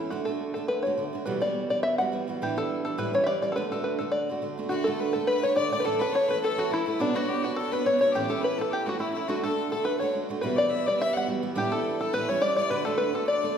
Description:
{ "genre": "celtic folk", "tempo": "210 BPM", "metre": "4/4", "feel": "swing 54% on 8ths", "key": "D major", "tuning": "A4 = 440 Hz", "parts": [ { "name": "open-back banjo", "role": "melody", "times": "0.0-13.6 s", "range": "D4 to F#5", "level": "-27 LUFS", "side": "left 1 dB", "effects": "none" }, { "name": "picked steel-string acoustic guitar", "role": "accompaniment", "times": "0.0-13.6 s", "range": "E2 to C#5", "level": "-29 LUFS", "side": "right 4 dB", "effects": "none" }, { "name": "bright fiddle", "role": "second line", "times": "4.7-13.6 s", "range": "D4 to F#5", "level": "-32 LUFS", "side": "left 3 dB", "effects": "none" } ], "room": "wet recital hall reverb, RT60 1.6 s", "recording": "recorded in a church or concert hall", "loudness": "-24 LUFS", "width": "side -8 dB against mid", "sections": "0.0-4.7 A section; 4.7-13.6 A section", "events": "none", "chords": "0.1 D; 1.3 Emadd9; 2.4 A7sus4; 3.0 A7; 3.6 D; 5.8 A; 7.0 Bmadd9; 8.1 A; 9.3 D; 10.4 Emadd9; 11.6 A7sus4; 12.1 A7; 12.7 D" }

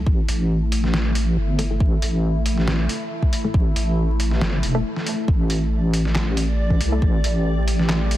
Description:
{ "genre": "deep dubstep", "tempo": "138 BPM", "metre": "4/4", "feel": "swing 54% on 16ths, half-time", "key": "unclear", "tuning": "A4 = 440 Hz", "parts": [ { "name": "deep dark ambient pad", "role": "sustained chords", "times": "0.1-8.2 s", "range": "A3 to G4", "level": "-28 LUFS", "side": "equal", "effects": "chorus, built-in reverb" }, { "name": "filtered dub chord stab", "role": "stabs", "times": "0.0-7.0 s", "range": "A3 to A4", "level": "-31 LUFS", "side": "left 3 dB", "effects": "phaser, dub echo" }, { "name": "deep soft wobble bass", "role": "bass", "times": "0.0-8.2 s", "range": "E1 to C2", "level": "-20 LUFS", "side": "equal", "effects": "chorus" }, { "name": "electronic kick drum", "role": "drums", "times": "0.1-7.1 s", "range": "none", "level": "-19 LUFS", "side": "equal", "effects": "none" }, { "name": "trip hop sampler-style drum kit", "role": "drums", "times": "0.3-8.2 s", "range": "handclaps, hi-hat, snare drum", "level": "-27 LUFS", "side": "equal", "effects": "none" }, { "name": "backwards swelling texture", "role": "texture", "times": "5.8-8.2 s", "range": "D5", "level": "-32 LUFS", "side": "right 1 dB", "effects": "built-in reverb" } ], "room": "digital ambience", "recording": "dense, heavily limited modern master, vinyl crackle", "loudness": "-18 LUFS", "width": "side -14 dB against mid", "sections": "0.0-8.2 A section", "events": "none", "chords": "0.0 A5" }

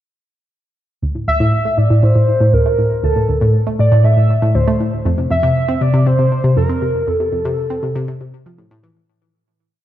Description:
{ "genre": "ambient", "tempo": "119 BPM", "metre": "4/4", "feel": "straight", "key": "D minor", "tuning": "A4 = 440 Hz", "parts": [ { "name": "analog pluck", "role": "riff", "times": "1.0-8.9 s", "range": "D2 to C4", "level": "-14 LUFS", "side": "equal", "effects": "chorus, ping-pong delay" }, { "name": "pulse-width lead", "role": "melody", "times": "1.3-8.6 s", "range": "A4 to E5", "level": "-18 LUFS", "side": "right 1 dB", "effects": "chorus, ping-pong delay" } ], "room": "wet concert hall reverb, RT60 2.5 s", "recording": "cassette tape", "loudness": "-13 LUFS", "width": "side -12 dB against mid", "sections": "1.0-9.1 A section", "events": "filter sweep on synth arpeggio sound 1.0-9.1; fade-out 6.4-9.1", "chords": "1.0 Dsus2; 5.1 F" }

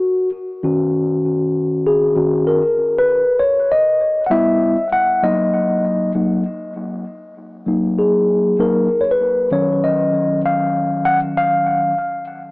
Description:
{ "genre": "hip hop", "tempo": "98 BPM", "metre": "4/4", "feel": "swing 64% on 16ths", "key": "unclear", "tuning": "A4 = 440 Hz", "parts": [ { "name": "mellow tine electric piano", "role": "solo", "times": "0.0-12.2 s", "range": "D#3 to F#5", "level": "-15 LUFS", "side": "left 1 dB", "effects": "medium stereo tremolo, cassette tape, analog delay" } ], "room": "moderate spring reverb, RT60 1.8 s", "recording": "home recording on cassette, small speaker sound", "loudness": "-14 LUFS", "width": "side -25 dB against mid", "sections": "0.0-12.5 A section", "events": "tine electric piano solo 0.0-12.5", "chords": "0.0 D#m7; 4.3 G6; 4.9 F#6; 9.5 D#m9" }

